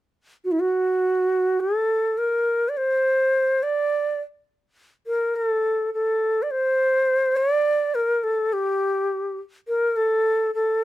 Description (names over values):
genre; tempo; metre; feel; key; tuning
persian; 104 BPM; 4/4; straight; unclear; A4 = 440 Hz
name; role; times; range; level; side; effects
bright reedy ney; solo; 0.4-10.8 s; Eb4+46c to D5; -20 LUFS; equal; none
room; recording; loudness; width
little or no reverb; close, detailed microphones; -20 LUFS; side -15 dB against mid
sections
0.4-5.1 A section; 5.1-10.8 B section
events
none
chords
none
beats
| 0.45 1.02 1.60 2.18 | 2.76 3.33 3.91 4.49 | 5.06 5.64 6.22 6.79 | 7.37 7.95 8.52 9.10 | 9.67 10.25 10.82